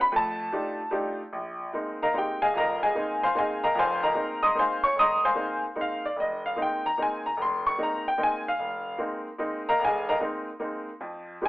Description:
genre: jazz.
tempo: 149 BPM.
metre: 3/4.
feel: swing 66% on 8ths.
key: unclear.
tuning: A4 = 440 Hz.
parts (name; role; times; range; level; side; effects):
clear upright piano; solo; 0.0-11.5 s; F1 to Eb6; -24 LUFS; equal; none.
room: moderate large studio reverb, RT60 0.9 s.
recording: band playing live in one room, telephone sound.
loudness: -24 LUFS.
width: side -18 dB against mid.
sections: 0.0-1.3 A section; 1.3-11.0 A section.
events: none.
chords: 0.1 F13; 1.3 Bb9sus4.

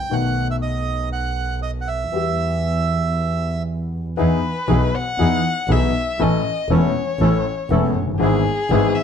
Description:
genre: tango.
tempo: 119 BPM.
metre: 4/4.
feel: rubato.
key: E minor, E major from 4.2 s.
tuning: A4 = 440 Hz.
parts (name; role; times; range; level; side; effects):
bandoneon; melody; 0.0-3.6 s; D#5 to G5; -24 LUFS; right 6 dB; none.
warm concert grand piano; accompaniment; 0.0-8.9 s; E1 to A4; -22 LUFS; left 4 dB; none.
dark double bass; bass; 0.0-8.9 s; E1 to E2; -21 LUFS; right 2 dB; none.
warm violin; second line; 4.2-9.0 s; G#4 to F#5; -24 LUFS; left 4 dB; none.
bandoneon; stabs; 4.2-8.9 s; B3 to A4; -29 LUFS; right 5 dB; tape echo.
room: moderate studio reverb, RT60 0.9 s.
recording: dark, warm production.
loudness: -18 LUFS.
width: side -7 dB against mid.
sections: 0.0-4.2 A section; 4.2-9.0 B section.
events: violin solo 4.2-9.0.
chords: 0.1 B7; 2.1 Em; 4.2 Emaj7; 6.2 A; 8.2 E/G#.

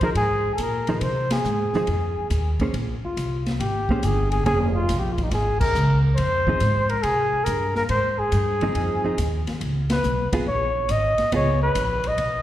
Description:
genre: jazz, small-group swing and bop.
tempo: 140 BPM.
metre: 4/4.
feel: swing 68% on 8ths.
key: F minor.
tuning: A4 = 440 Hz.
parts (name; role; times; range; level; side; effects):
mellow flugelhorn; melody; 0.0-12.4 s; Eb4 to Eb5; -24 LUFS; left 1 dB; slapback echo.
hollow-body jazz guitar; accompaniment; 0.0-11.6 s; F3 to C5; -26 LUFS; right 2 dB; slapback echo.
upright bass; bass; 0.0-12.4 s; F1 to C3; -24 LUFS; equal; none.
open jazz drum kit; drums; 0.0-12.3 s; crash cymbal, hi-hat, kick drum, ride cymbal, snare drum; -30 LUFS; left 1 dB; none.
room: light reverb, small room ambience.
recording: live gig heard through the venue's PA, recital hall reverb.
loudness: -20 LUFS.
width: side -13 dB against mid.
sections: 0.0-12.4 A section.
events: band accent 1.2, 5.5, 9.8.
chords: 0.0 Fm7; 2.7 Bbm9; 6.2 Fm7; 9.6 Db7.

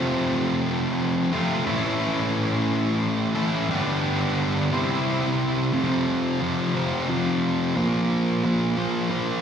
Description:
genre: rock.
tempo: 59 BPM (dotted quarters).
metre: 6/8.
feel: straight.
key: unclear.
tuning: A4 = 440 Hz.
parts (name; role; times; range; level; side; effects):
thick fuzz guitar; solo; 0.0-9.4 s; F2 to C5; -21 LUFS; equal; distortion, digital delay.
room: moderate club reverb, RT60 0.6 s.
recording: live gig heard through the venue's PA, recital hall reverb.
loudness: -21 LUFS.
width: side -8 dB against mid.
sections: 0.0-5.7 A section; 5.7-9.4 B section.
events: none.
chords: 0.0 F; 1.7 A; 3.7 G; 4.7 C; 5.7 F5; 7.8 Bb5.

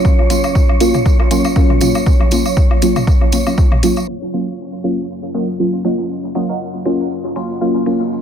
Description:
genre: dub techno.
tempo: 119 BPM.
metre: 4/4.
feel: swing 56% on 16ths.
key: Eb minor.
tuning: A4 = 440 Hz.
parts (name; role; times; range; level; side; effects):
deep dark ambient pad; sustained chords; 0.0-8.2 s; Gb3 to Eb5; -26 LUFS; right 1 dB; chorus, built-in reverb, sidechain pumping.
deep mellow chord stab; stabs; 0.0-8.2 s; Gb3 to F4; -17 LUFS; equal; chorus, phaser, cassette tape, sidechain pumping, dub echo.
electronic kick drum; drums; 0.0-3.7 s; none; -13 LUFS; equal; overdrive, studio reverb.
wind-like tuned noise texture; texture; 0.0-4.1 s; Db5; -25 LUFS; right 3 dB; built-in reverb, sidechain pumping.
tambourine; percussion; 0.1-8.2 s; none; -27 LUFS; right 4 dB; none.
electronic woodblock and toms; percussion; 0.2-4.1 s; none; -25 LUFS; left 3 dB; sidechain pumping on perc, studio reverb, sidechain pumping on toms, dub echo.
electronic hi-hat; drums; 0.3-8.0 s; none; -26 LUFS; left 2 dB; overdrive, low-pass filter on hats, studio reverb.
filtered dub chord stab; riff; 5.3-6.7 s; Bb4 to Gb5; -30 LUFS; right 5 dB; phaser, analog chorus, sidechain pumping, dub echo.
room: light reverb.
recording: low-pass filter.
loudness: -13 LUFS.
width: side -8 dB against mid.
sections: 0.0-4.1 A section; 4.1-8.2 B section.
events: filter sweep on synth stab 0.0-4.1; filter sweep on drum 4.1-8.2; filter sweep 4.1-8.2.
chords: 0.0 Ebm7 (rootless); 4.1 Ebm7.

